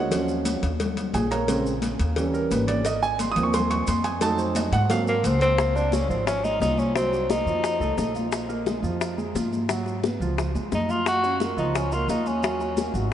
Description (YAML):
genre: Afro-Cuban jazz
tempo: 176 BPM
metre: 4/4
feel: straight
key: Db major from 5.6 s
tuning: A4 = 440 Hz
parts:
  - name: warm concert grand piano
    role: accompaniment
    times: 0.0-13.1 s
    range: Db3 to Eb6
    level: -27 LUFS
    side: right 3 dB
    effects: none
  - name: upright bass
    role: bass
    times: 0.0-13.1 s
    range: Ab1 to Ab2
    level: -28 LUFS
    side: equal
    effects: none
  - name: congas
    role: percussion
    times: 0.1-13.1 s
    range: none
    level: -30 LUFS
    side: left 2 dB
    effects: none
  - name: cowbell and bongos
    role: percussion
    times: 0.1-12.9 s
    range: none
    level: -31 LUFS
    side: left 6 dB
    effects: none
  - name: maracas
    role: percussion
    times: 0.1-13.1 s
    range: none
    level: -40 LUFS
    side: right 4 dB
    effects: none
  - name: mellow tenor saxophone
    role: melody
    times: 5.1-8.2, 10.7-12.9 s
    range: Bb3 to Gb4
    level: -26 LUFS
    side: left 1 dB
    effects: none
room: moderate cathedral reverb, RT60 6.1 s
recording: in a vast, echoing space, nothing above 10.7 kHz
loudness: -22 LUFS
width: side -10 dB against mid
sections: 0.0-5.6 A section; 5.6-13.1 B section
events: grand piano solo 0.0-5.6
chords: 0.1 Ebm9; 1.5 Bbm9; 2.2 Eb7b9; 2.8 Ab69; 4.2 F7b9; 4.9 Ab7; 5.6 Dbmaj7; 7.0 Cm7b5; 7.6 F7; 8.3 Bb5; 9.7 Abm7; 10.4 Db; 11.1 Gbmaj7; 12.4 Ebm7